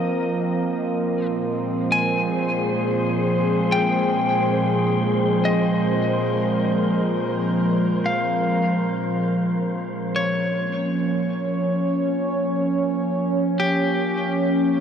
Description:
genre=ambient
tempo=free time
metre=none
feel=none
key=Bb dorian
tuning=A4 = 440 Hz
part: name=warbly tape-like pad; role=sustained chords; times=0.0-14.8 s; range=Bb2 to Eb5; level=-21 LUFS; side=equal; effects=chorus, built-in reverb
part: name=clean electric guitar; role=arpeggios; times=0.0-14.8 s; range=G4 to Ab5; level=-26 LUFS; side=left 2 dB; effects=diffuse ambient delay
part: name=analog drone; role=drone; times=0.0-10.2 s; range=Bb3 to Bb4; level=-32 LUFS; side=equal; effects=chorus
part: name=wind-like tuned noise texture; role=texture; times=1.8-10.2 s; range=C5 to C6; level=-31 LUFS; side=right 1 dB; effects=built-in reverb
room=wet huge ambient reverb, RT60 8.2 s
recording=dark, warm production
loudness=-19 LUFS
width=side -8 dB against mid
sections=0.0-10.1 A section; 10.1-14.8 B section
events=none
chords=0.0 Bb5; 0.9 Fm/Bb; 10.1 Bbm

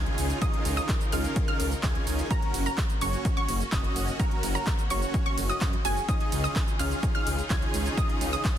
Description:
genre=EDM, festival progressive house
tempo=127 BPM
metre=4/4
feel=straight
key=Db major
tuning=A4 = 440 Hz
part: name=clear studio string section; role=sustained chords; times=0.0-8.6 s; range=Db3 to Bb4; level=-37 LUFS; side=left 1 dB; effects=sidechain pumping
part: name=wide unison pluck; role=arpeggios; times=0.0-8.5 s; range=Ab5 to Ab6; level=-33 LUFS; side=right 1 dB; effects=sidechain pumping, digital delay
part: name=dense compressed supersaw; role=riff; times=0.0-8.5 s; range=Db4 to Ab5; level=-34 LUFS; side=right 1 dB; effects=sidechain pumping, digital delay
part: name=wide detuned saw bass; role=bass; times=0.0-8.4 s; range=Gb1 to Gb2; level=-30 LUFS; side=equal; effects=chorus, tube saturation, sidechain pumping
part: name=downlifter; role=sound effects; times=0.0-2.3 s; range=none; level=-46 LUFS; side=equal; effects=none
part: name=big-room dance drum kit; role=drums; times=0.1-8.5 s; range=cabasa, handclaps, hi-hat, ride cymbal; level=-35 LUFS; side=right 2 dB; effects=overdrive
part: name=electronic kick drum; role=drums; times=0.4-8.5 s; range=none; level=-28 LUFS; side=equal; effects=overdrive
room=little or no reverb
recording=dense, heavily limited modern master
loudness=-24 LUFS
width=side -10 dB against mid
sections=0.0-8.6 A section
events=none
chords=0.0 Dbadd9; 2.3 Gb; 6.1 Dbadd9

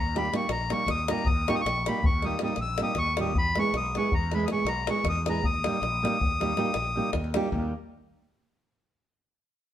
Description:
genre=balkan folk, Balkan wedding band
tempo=316 BPM (eighths)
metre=11/8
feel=straight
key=Eb phrygian dominant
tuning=A4 = 440 Hz
part: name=accordion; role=melody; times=0.0-7.1 s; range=Bb5 to Fb6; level=-29 LUFS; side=left 2 dB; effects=none
part: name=mellow fretless electric bass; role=bass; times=0.0-7.7 s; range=Bb1 to E2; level=-32 LUFS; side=equal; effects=none
part: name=flamenco guitar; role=accompaniment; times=0.2-7.7 s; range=G3 to G#4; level=-30 LUFS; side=right 3 dB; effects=none
part: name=davul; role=percussion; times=0.2-7.7 s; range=none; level=-30 LUFS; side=left 2 dB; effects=none
room=moderate stone room reverb, RT60 1.1 s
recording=band playing live in one room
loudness=-24 LUFS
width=side -11 dB against mid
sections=0.0-7.5 A section; 7.5-9.6 B section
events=none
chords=0.0 Eb; 3.4 E; 5.4 Eb

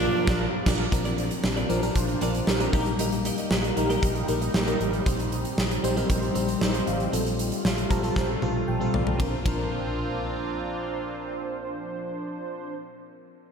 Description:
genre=1980s-style pop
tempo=116 BPM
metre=4/4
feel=straight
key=Bb major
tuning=A4 = 440 Hz
part: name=FM electric piano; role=accompaniment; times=0.0-13.5 s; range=F3 to Bb5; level=-30 LUFS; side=left 2 dB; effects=chorus, phaser, slapback echo
part: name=overdriven semi-hollow guitar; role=accompaniment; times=0.0-0.8 s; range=none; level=barely audible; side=none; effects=none
part: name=sweeping resonant pad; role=sustained chords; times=0.0-12.5 s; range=Bb2 to D6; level=-35 LUFS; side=equal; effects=chorus
part: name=clean electric guitar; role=riff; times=0.0-5.0 s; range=C4 to Eb5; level=-36 LUFS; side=right 2 dB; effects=wide subtle chorus, tape echo, slapback echo
part: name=mellow synth brass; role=stabs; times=0.0-12.7 s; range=F3 to C5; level=-34 LUFS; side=right 2 dB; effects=chorus, tape echo, slapback echo
part: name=vintage muted fingered electric bass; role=bass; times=0.0-12.7 s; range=A1 to Bb1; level=-31 LUFS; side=equal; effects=none
part: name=huge arena drum kit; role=drums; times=0.3-9.6 s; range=crash cymbal, hi-hat, kick drum, ride cymbal, snare drum, toms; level=-27 LUFS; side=right 1 dB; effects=none
room=moderate lush hall reverb, RT60 1.8 s, studio reverb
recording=big arena sound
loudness=-24 LUFS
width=side -6 dB against mid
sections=0.9-9.2 A section; 9.2-13.3 B section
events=drum fill 0.0-0.9, 8.2-9.2; band accent 0.0-0.9; FM electric piano fill 7.6-9.2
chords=0.0 Bb; 0.9 Bbadd9; 2.7 Eb/Bb; 5.1 Cm/Bb; 9.2 Bbadd9

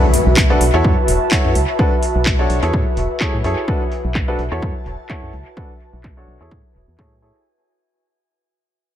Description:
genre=piano house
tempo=127 BPM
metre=4/4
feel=swing 55% on 16ths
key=B dorian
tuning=A4 = 437 Hz
part: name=bright upright piano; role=riff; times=0.0-7.4 s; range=D4 to C#5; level=-22 LUFS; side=left 1 dB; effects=vintage 12-bit sampler grit, sidechain pumping, low-pass filter, analog delay
part: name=impact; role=sound effects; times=0.0-1.8 s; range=none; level=-24 LUFS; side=equal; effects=none
part: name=airy breathy pad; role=texture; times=0.0-7.5 s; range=F#4 to A5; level=-22 LUFS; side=equal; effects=chorus, sidechain pumping
part: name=house drum kit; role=drums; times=0.1-7.3 s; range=handclaps, hi-hat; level=-23 LUFS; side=equal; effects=overdrive, low-pass filter on hats, low-pass filter on cymbals, low-pass filter on perc, low-pass filter on snare, low-pass filter on room, analog delay
part: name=organ-like FM bass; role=bass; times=0.3-7.3 s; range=E1 to A2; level=-19 LUFS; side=equal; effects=sidechain pumping
part: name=electronic kick drum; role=drums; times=0.4-7.1 s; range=none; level=-19 LUFS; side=equal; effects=overdrive
room=light reverb, digital ambience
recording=echo-heavy mix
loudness=-14 LUFS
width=side -10 dB against mid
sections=0.0-7.5 A section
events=fade-out 0.0-7.5; impact 0.0-1.8; filter sweep on drum 0.0-7.5; filter sweep on FM bass 0.0-7.5; filter sweep on upright piano 0.0-7.5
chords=0.0 Bm7; 0.8 F#m7; 1.8 Bm7; 2.7 Amaj7; 3.7 Bm7; 4.6 F#m7; 5.6 Bm7; 6.5 Amaj7

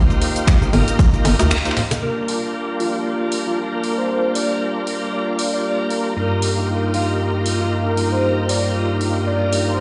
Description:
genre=deep house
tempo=116 BPM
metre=4/4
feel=swing 56% on 16ths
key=G minor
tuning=A4 = 436 Hz
part: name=warm analog pad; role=sustained chords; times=0.0-9.8 s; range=G3 to A5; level=-29 LUFS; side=equal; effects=subtle chorus, sidechain pumping
part: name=bright tonewheel organ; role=stabs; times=0.0-9.8 s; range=G2 to C5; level=-24 LUFS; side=equal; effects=overdrive, chorus vibrato, slow rotary speaker, sidechain pumping, low-pass filter, dub echo
part: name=hollow knocking FM bass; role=bass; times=0.0-1.5 s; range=G1 to D2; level=-19 LUFS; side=equal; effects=none
part: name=dusty soul sampler-style drum kit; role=drums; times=0.1-2.0 s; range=hi-hat, ride cymbal, snare drum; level=-32 LUFS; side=equal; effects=sidechain pumping on cymbals, high-pass filter on cymbals, high-pass filter on snare, sidechain pumping on hats, high-pass filter on hats, high-pass filter on room
part: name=punchy analog drum machine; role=drums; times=0.1-9.6 s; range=cabasa, finger snaps, hi-hat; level=-30 LUFS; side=equal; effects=none
part: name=bongos and congas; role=percussion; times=0.2-2.0 s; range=none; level=-27 LUFS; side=equal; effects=sidechain pumping on perc
part: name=electronic kick drum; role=drums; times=0.5-1.1 s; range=none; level=-16 LUFS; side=equal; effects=none
part: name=warm velvety synth lead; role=melody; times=2.0-9.8 s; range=F4 to D5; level=-26 LUFS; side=equal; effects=chorus, tape echo
room=moderate lush hall reverb, RT60 1.7 s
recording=played on a big sound system in a bare room, stone room reverb, nothing above 10.4 kHz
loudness=-19 LUFS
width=mono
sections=0.0-2.0 A section; 2.0-9.8 B section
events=break 1.5-2.0; band accent 1.5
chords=0.0 Ebadd9; 2.0 Gm9; 6.2 Ebadd9/G

